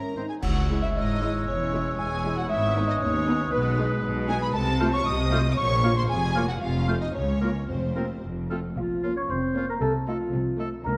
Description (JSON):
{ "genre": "cinematic, playful, whimsical film cue", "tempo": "116 BPM", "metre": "2/4", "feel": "straight", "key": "C# minor, Bb minor from 4.5 s", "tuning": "A4 = 439 Hz", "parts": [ { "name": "celesta", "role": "melody", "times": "0.0-11.0 s", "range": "B4 to Eb6", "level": "-35 LUFS", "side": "equal", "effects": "none" }, { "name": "warm studio violin section", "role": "melody", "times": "0.0-10.8 s", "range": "F4 to Eb6", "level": "-36 LUFS", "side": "equal", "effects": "none" }, { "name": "mellow hollow silver concert flute", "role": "second line", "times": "0.0-10.7 s", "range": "Db5 to F6", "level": "-38 LUFS", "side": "equal", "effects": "none" }, { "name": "warm studio violin section", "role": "second line", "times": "0.0-10.8 s", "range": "B3 to Eb5", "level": "-38 LUFS", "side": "equal", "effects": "none" }, { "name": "mellow French horn section", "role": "sustained chords", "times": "0.0-11.0 s", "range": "F3 to F4", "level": "-36 LUFS", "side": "equal", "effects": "none" }, { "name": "rich studio cello section", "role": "bass", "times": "0.0-11.0 s", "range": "C#2 to G#3", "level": "-34 LUFS", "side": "equal", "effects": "none" }, { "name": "clear clarinet", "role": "second line", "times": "0.2-11.0 s", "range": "G#3 to Db5", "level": "-36 LUFS", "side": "equal", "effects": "none" }, { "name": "clear oboe", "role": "second line", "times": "0.2-10.7 s", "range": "F4 to Db5", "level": "-40 LUFS", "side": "equal", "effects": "none" }, { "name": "warm studio viola section", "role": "accompaniment", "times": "0.2-10.8 s", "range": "G#3 to F4", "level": "-37 LUFS", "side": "equal", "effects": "none" }, { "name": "clear studio double bass section", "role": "bass", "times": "0.2-11.0 s", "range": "E1 to D#2", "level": "-31 LUFS", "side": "equal", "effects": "none" }, { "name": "clash cymbals and concert bass drum", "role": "percussion", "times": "0.4-1.4 s", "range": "none", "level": "-35 LUFS", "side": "equal", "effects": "none" } ], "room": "wet scoring stage reverb, RT60 1.6 s", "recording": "dark, warm production", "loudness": "-26 LUFS", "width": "mono", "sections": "0.4-8.8 A section; 8.8-11.0 B section", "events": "band accent 0.4-1.0", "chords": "0.4 C#m; 1.5 C#m/E; 2.5 G#m; 3.5 G#m/B; 4.5 F7/C; 5.6 Bbm; 6.6 F; 7.1 Bbm/Db; 7.7 Fsus4; 8.2 F; 8.8 Bbm; 9.8 F7/C" }